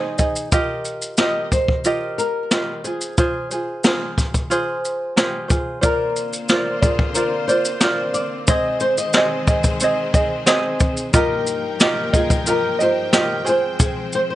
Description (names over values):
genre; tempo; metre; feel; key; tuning
acoustic pop; 90 BPM; 4/4; straight; Eb major; A4 = 440 Hz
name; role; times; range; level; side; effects
flamenco guitar; melody; 0.0-14.3 s; Ab4 to Eb5; -23 LUFS; left 1 dB; digital delay
tenor ukulele; accompaniment; 0.0-14.3 s; C4 to Eb5; -21 LUFS; right 2 dB; none
jazz brush drum kit; drums; 0.2-14.3 s; kick drum, shaker, snare drum; -19 LUFS; equal; none
warm studio string section; sustained chords; 5.8-14.3 s; G2 to G5; -28 LUFS; left 4 dB; none
room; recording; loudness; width
small room ambience; nothing above 10.3 kHz; -17 LUFS; side -14 dB against mid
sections
0.0-5.8 A section; 5.8-14.3 B section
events
none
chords
0.0 Ab; 0.5 Ebadd9; 2.8 Fm; 5.8 Bbadd9; 8.5 Ab; 11.1 Ebadd9/G; 13.5 Fmadd9